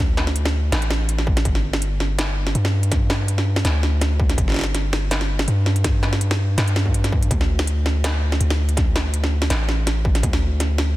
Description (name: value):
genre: half-time drum and bass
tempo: 164 BPM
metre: 4/4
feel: swing 54% on 16ths, half-time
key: unclear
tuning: A4 = 440 Hz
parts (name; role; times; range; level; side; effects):
- long sustained 808-style bass; bass; 0.0-11.0 s; G1 to G2; -20 LUFS; equal; none
- industrial drum kit; drums; 0.2-10.9 s; hi-hat, snare drum; -24 LUFS; right 1 dB; none
- electronic kick drum; drums; 1.3-10.3 s; none; -20 LUFS; equal; distortion
room: little or no reverb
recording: dense, heavily limited modern master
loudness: -18 LUFS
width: side -17 dB against mid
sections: 0.0-11.0 A section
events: none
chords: none